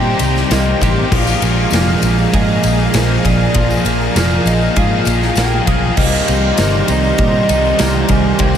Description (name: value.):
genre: rock, shoegaze and dream pop.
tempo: 99 BPM.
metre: 4/4.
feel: straight.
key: unclear.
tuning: A4 = 440 Hz.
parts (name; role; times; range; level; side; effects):
hollow clarinet-like synth lead; melody; 0.0-8.6 s; C5 to Bb5; -21 LUFS; left 1 dB; chorus, analog delay.
lush unison pad; sustained chords; 0.0-8.6 s; G3 to C6; -23 LUFS; equal; chorus.
direct-recorded clean electric guitar; arpeggios; 0.0-8.6 s; F3 to Ab4; -23 LUFS; right 6 dB; analog chorus, analog delay.
overdriven semi-hollow guitar; riff; 0.0-8.6 s; Bb2 to G4; -20 LUFS; right 6 dB; reverse reverb.
thick fuzz guitar; riff; 0.0-8.6 s; Bb2 to C4; -20 LUFS; left 7 dB; distortion, ensemble chorus.
vintage muted picked electric bass; bass; 0.0-8.6 s; F1 to Bb2; -17 LUFS; equal; none.
big rock drum kit; drums; 0.2-8.5 s; crash cymbal, kick drum, ride cymbal, snare drum; -18 LUFS; equal; none.
tambourine; percussion; 0.2-8.6 s; none; -32 LUFS; left 7 dB; none.
room: wet huge ambient reverb, RT60 7.4 s.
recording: dreamy mix soaked in reverb.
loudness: -11 LUFS.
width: side -9 dB against mid.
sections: 0.0-8.6 A section.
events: none.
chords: 0.0 Cm7; 1.1 Bb7sus4; 6.0 Cm7.